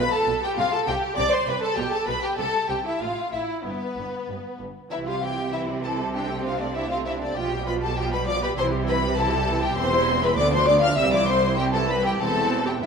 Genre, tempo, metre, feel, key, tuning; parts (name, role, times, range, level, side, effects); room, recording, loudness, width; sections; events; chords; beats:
quick classical-period movement for string orchestra; 99 BPM; 2/4; rubato; C major; A4 = 440 Hz
warm symphonic violin section; melody; 0.0-12.9 s; B4 to F6; -28 LUFS; left 4 dB
rich symphonic violin section; second line; 0.0-12.9 s; B3 to F5; -25 LUFS; left 2 dB
clear symphonic viola section; accompaniment; 0.0-12.9 s; D3 to D5; -28 LUFS; right 2 dB
warm symphonic cello section; bass; 0.0-12.9 s; C2 to C3; -30 LUFS; right 4 dB
warm symphonic double bass section; bass; 0.0-12.9 s; E1 to D2; -31 LUFS; right 4 dB
wet scoring stage reverb, RT60 1.4 s; minimal, uncompressed stereo recording; -21 LUFS; side -6 dB against mid
0.0-4.9 A section; 4.9-12.9 B section
0.0 Gadd9; 0.6 C5; 1.8 Gadd9/B; 2.4 C6; 3.0 A5; 3.6 G; 4.9 C; 6.1 D5/C; 7.4 G7/B; 8.6 C; 9.8 C/E; 10.4 Bdim/D; 11.0 C; 12.2 C/E
0.57 | 1.17 1.77 | 2.38 3.01 | 3.65 4.28 | 4.91 5.53 | 6.13 6.75 | 7.36 7.97 | 8.57 9.17 | 9.77 10.38 | 10.98 11.58 | 12.19 12.82